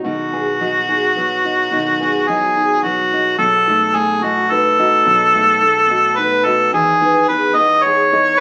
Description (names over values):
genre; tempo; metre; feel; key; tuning
acoustic folk duo or small band; 108 BPM; 3/4; straight; unclear; A4 = 440 Hz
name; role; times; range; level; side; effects
warm harmonica; second line; 0.0-8.4 s; F#4 to D#5; -16 LUFS; equal; none
fingerpicked steel-string acoustic guitar; accompaniment; 0.0-8.4 s; E2 to B4; -24 LUFS; equal; none
felt-muted upright piano; arpeggios; 0.0-8.4 s; D#3 to G#4; -27 LUFS; equal; none
upright bass; bass; 0.0-8.4 s; B1 to E2; -40 LUFS; equal; none
room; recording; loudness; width
moderate large studio reverb, RT60 0.9 s; very old 78 rpm record, vinyl crackle; -15 LUFS; mono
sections
0.0-3.4 A section; 3.4-8.4 B section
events
none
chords
0.0 B; 3.4 B7; 6.7 Emaj7